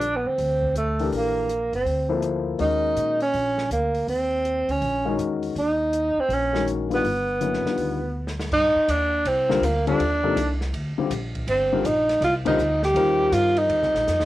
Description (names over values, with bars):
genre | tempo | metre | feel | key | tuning
modal jazz | 162 BPM | 4/4 | swing 65% on 8ths | C minor from 8.5 s | A4 = 440 Hz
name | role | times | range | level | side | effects
breathy tenor saxophone | melody | 0.0-14.3 s | A3 to G4 | -22 LUFS | right 1 dB | cassette tape
upright bass | bass | 0.0-14.3 s | F#1 to Bb2 | -29 LUFS | equal | none
open jazz drum kit | drums | 0.0-14.3 s | crash cymbal, hi-hat, kick drum, ride cymbal, snare drum | -36 LUFS | equal | cassette tape
warm grand piano | accompaniment | 1.0-14.0 s | C3 to C5 | -26 LUFS | left 6 dB | cassette tape
room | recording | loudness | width
moderate studio reverb, RT60 0.6 s | home recording on cassette | -20 LUFS | side -15 dB against mid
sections
0.0-8.5 A section; 8.5-14.3 B section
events
drum fill 8.1-8.5, 14.1; band accent 12.4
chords
0.0 Gm11; 2.6 Ebm11; 7.0 G7b13; 8.5 Cm9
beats
0.01 0.38 0.75 | 1.12 1.49 1.86 2.23 | 2.60 2.97 3.34 3.71 | 4.08 4.45 4.82 5.19 | 5.56 5.93 6.30 6.67 | 7.04 7.41 7.78 8.15 | 8.52 8.89 9.26 9.63 | 10.00 10.37 10.74 11.11 | 11.48 11.85 12.22 12.59 | 12.96 13.33 13.70 14.07